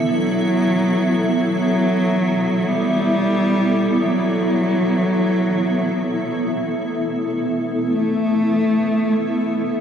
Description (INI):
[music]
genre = ambient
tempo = free time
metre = none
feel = none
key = unclear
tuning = A4 = 440 Hz
[part]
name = warm cello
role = melody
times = 0.0-9.8 s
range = F#3 to B3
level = -20 LUFS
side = equal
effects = tape echo
[part]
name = granular cloud pad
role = sustained chords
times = 0.0-9.2 s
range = B3 to E5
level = -20 LUFS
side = equal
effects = built-in reverb
[sound]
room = wet huge ambient reverb, RT60 7.9 s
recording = dreamy mix soaked in reverb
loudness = -17 LUFS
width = side -8 dB against mid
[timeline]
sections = 0.0-9.2 A section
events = none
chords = 0.0 B5; 9.2 N.C.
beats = free time